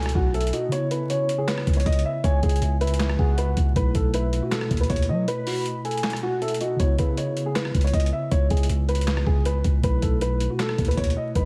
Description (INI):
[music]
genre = hip hop, trap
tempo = 158 BPM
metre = 4/4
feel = half-time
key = C# minor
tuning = A4 = 440 Hz
[part]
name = dark concert grand piano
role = melody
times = 0.0-11.5 s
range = F#4 to E5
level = -30 LUFS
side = equal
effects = tape echo
[part]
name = soft octave-layered synth lead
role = second line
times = 0.0-6.8 s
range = C#5 to B5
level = -36 LUFS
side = equal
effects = chorus, tremolo, tape echo
[part]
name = mellow tine electric piano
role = accompaniment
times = 0.0-11.5 s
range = B2 to E4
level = -32 LUFS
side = equal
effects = none
[part]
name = long sustained 808-style bass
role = bass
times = 0.0-11.5 s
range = B1 to F#3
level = -27 LUFS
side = equal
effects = none
[part]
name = boom bap sampler-style drum kit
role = drums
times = 0.0-11.4 s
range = handclaps, hi-hat, kick drum, rim click, snare drum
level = -27 LUFS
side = equal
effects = none
[sound]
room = light reverb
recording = vinyl crackle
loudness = -23 LUFS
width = mono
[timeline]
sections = 0.0-6.8 A section; 6.8-11.5 A section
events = kick muted 0.7-1.5; break 5.3-6.8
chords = 0.0 B7sus4; 0.7 C#m7; 3.8 B7sus4; 6.8 C#m7; 9.8 B7sus4